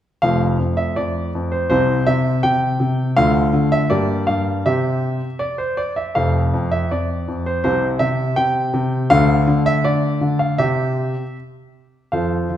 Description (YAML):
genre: classical-period piano sonatina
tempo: 81 BPM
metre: 2/4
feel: straight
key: unclear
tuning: A4 = 435 Hz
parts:
  - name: clear baby grand piano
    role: solo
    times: 0.2-12.6 s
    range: F1 to G5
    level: -16 LUFS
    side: equal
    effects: none
room: wet recital hall reverb, RT60 1.4 s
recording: recorded in a church or concert hall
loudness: -16 LUFS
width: side -11 dB against mid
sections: 0.2-12.1 A section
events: none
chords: 0.2 F; 1.7 C; 3.2 Dm; 3.9 Gm7; 4.7 C; 6.2 F; 7.6 C5; 9.1 D5; 10.6 C